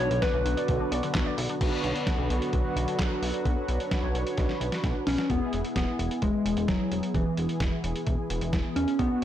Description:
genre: synth-pop.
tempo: 130 BPM.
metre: 4/4.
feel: straight.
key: unclear.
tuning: A4 = 440 Hz.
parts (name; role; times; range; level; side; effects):
soft struck synth lead; melody; 0.0-0.9, 5.1-9.2 s; E3 to C#5; -28 LUFS; left 1 dB; chorus, slapback echo.
mellow synth brass; accompaniment; 0.0-9.2 s; B3 to B4; -33 LUFS; equal; chorus.
chorused pulse-width pad; sustained chords; 0.0-5.3 s; D3 to C#5; -33 LUFS; equal; none.
warbly dusty pluck; arpeggios; 0.0-1.6 s; D3 to D5; -36 LUFS; left 2 dB; chorus, slapback echo.
chorused synth bass; bass; 0.0-9.1 s; E1 to B1; -31 LUFS; equal; none.
lo-fi sampler-style drum kit; drums; 0.1-9.2 s; crash cymbal, handclaps, hi-hat, kick drum, snare drum; -30 LUFS; equal; overdrive.
room: light reverb.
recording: blown-out, overdriven recording, overdrive.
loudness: -25 LUFS.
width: side -11 dB against mid.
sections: 0.0-1.6 A section; 1.6-5.3 B section; 5.3-9.2 C section.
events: drum fill 4.4-5.3.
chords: 0.0 Bm; 5.3 E.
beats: 0.22 0.69 1.15 | 1.61 2.07 2.53 2.99 | 3.46 3.92 4.38 4.84 | 5.30 5.76 6.22 6.68 | 7.15 7.61 8.07 8.53 | 8.99.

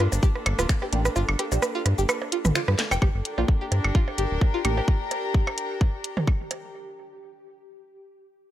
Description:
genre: minimal techno.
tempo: 129 BPM.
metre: 4/4.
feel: swing 55% on 16ths.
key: G minor.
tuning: A4 = 437 Hz.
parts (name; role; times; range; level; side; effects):
string-like resonator pluck; riff; 0.0-4.8 s; F4 to G5; -32 LUFS; equal; chorus, phaser, sidechain pumping, dub echo.
round analog bass; bass; 0.0-4.8 s; D1 to G2; -24 LUFS; equal; sidechain pumping.
garage drum kit; drums; 0.0-6.6 s; cabasa, finger snaps, hi-hat, snare drum; -30 LUFS; left 1 dB; none.
rich chamber string section; texture; 0.0-6.7 s; Bb3 to Bb5; -34 LUFS; left 3 dB; sidechain pumping.
swarming drone; texture; 0.0-6.7 s; G4 to A4; -39 LUFS; equal; built-in reverb, sidechain pumping.
minimal click drum kit; percussion; 0.1-6.6 s; percussion blips, rim click, toms; -28 LUFS; right 3 dB; dub echo.
electronic kick drum; drums; 0.2-6.4 s; none; -21 LUFS; equal; none.
filtered dub chord stab; stabs; 0.9-4.8 s; Bb3 to G4; -34 LUFS; right 2 dB; phaser, analog chorus, dub echo.
room: digital ambience.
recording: none.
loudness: -22 LUFS.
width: side -12 dB against mid.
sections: 0.0-3.0 A section; 3.0-6.7 B section.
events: drop 0.0-3.0; kick drops out 1.2-3.0; drum fill 2.8.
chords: 0.0 Gm.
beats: 0.23 0.69 | 1.16 1.62 2.09 2.55 | 3.02 3.48 3.95 4.41 | 4.88 5.34 5.81 6.27.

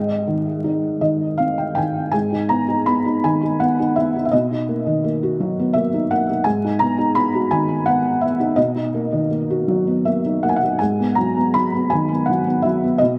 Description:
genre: classical, lyrical solo piano.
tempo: 83 BPM.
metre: 3/4.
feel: rubato.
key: G# minor.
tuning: A4 = 440 Hz.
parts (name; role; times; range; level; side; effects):
felt-muted upright piano; solo; 0.0-13.2 s; Ab2 to B5; -19 LUFS; equal; tape echo.
room: moderate spring reverb, RT60 2.6 s.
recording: dark, warm production, vinyl crackle.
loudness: -19 LUFS.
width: mono.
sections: 0.0-2.1 A section; 2.1-13.2 B section.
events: felt piano fill 0.6-2.1.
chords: 0.0 Ab; 2.1 G#m; 4.3 Bmaj7; 6.5 G#m7; 8.6 Bmaj7; 10.8 G#m7.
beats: 0.64 1.39 | 2.14 2.88 3.61 | 4.33 5.04 5.75 | 6.46 7.16 7.86 | 8.57 9.29 10.05 | 10.80 11.54 12.28 | 13.00.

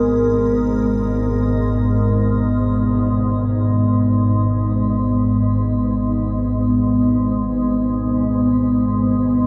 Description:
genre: dark ambient drone.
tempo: free time.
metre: none.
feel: none.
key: G# minor.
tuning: A4 = 440 Hz.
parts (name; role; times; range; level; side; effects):
deep dark ambient pad; sustained chords; 0.0-9.5 s; B3 to D#5; -21 LUFS; equal; chorus, built-in reverb, shimmer reverb.
organ-like drone; drone; 0.0-9.5 s; G#1 to G#2; -21 LUFS; equal; ensemble chorus, built-in reverb.
icy glass pad; texture; 0.0-0.9 s; A#4; -28 LUFS; equal; chorus, built-in reverb, phaser, shimmer reverb.
tam-tam; percussion; 0.9-2.9 s; none; -41 LUFS; equal; none.
room: wet cathedral reverb, RT60 6.4 s.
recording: none.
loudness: -18 LUFS.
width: mono.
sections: 0.9-9.5 A section.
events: none.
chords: 0.0 G#madd9.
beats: free time.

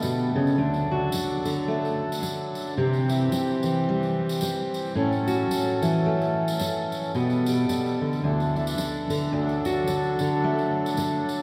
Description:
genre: acoustic folk duo or small band.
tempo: 110 BPM.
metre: 4/4.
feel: swing 58% on 8ths.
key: D major.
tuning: A4 = 441 Hz.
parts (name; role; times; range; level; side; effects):
fingerpicked steel-string acoustic guitar; accompaniment; 0.0-11.4 s; D2 to G4; -26 LUFS; equal; none.
pedal harmonium; sustained chords; 0.0-11.4 s; B2 to A4; -32 LUFS; equal; none.
tambourine; percussion; 0.0-11.4 s; none; -40 LUFS; equal; none.
room: wet cathedral reverb, RT60 4.9 s.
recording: recorded in a church or concert hall.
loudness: -25 LUFS.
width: mono.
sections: 0.0-9.3 A section; 9.3-11.4 A section.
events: none.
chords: 0.0 Gadd9/B; 0.6 D; 2.8 C; 5.0 A6; 7.1 Gadd9/B; 8.2 Dsus2; 9.3 D.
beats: 0.03 | 0.57 1.12 1.67 2.22 | 2.77 3.31 3.86 4.41 | 4.95 5.50 6.05 6.60 | 7.14 7.69 8.24 8.78 | 9.33 9.88 10.42 10.97.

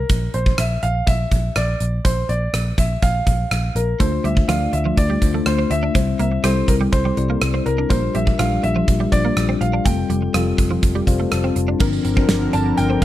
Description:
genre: 1980s-style pop.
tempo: 123 BPM.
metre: 4/4.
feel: straight.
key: unclear.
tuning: A4 = 442 Hz.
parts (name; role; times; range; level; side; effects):
warm baby grand piano; melody; 0.0-13.0 s; Bb4 to A5; -24 LUFS; equal; slapback echo.
vintage muted picked electric bass; bass; 0.0-13.0 s; F1 to D2; -21 LUFS; equal; none.
gated 80s drum kit; drums; 0.1-13.0 s; crash cymbal, hi-hat, kick drum, rim click, snare drum; -20 LUFS; equal; none.
bell-like tine electric piano; accompaniment; 4.0-13.0 s; F3 to A5; -22 LUFS; left 6 dB; phaser.
twelve-string electric guitar; riff; 4.0-13.0 s; F3 to D4; -26 LUFS; right 5 dB; ensemble chorus, slapback echo.
brassy analog pad; sustained chords; 11.8-13.0 s; D3 to Bb4; -25 LUFS; right 1 dB; chorus.
tambourine; percussion; 11.8-12.9 s; none; -38 LUFS; right 13 dB; none.
room: little or no reverb.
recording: none.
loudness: -16 LUFS.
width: side -14 dB against mid.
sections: 0.0-11.8 A section; 11.8-13.0 B section.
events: tine electric piano fill 10.8-11.8.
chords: 0.1 Bb; 4.0 Dm7; 6.0 C; 7.9 Gm7/Bb; 9.9 Fadd9; 11.8 Bbadd9/G.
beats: | 0.10 0.58 1.07 1.56 | 2.05 2.54 3.02 3.51 | 4.00 4.49 4.98 5.46 | 5.95 6.44 6.93 7.42 | 7.90 8.39 8.88 9.37 | 9.85 10.34 10.83 11.32 | 11.80 12.29 12.78.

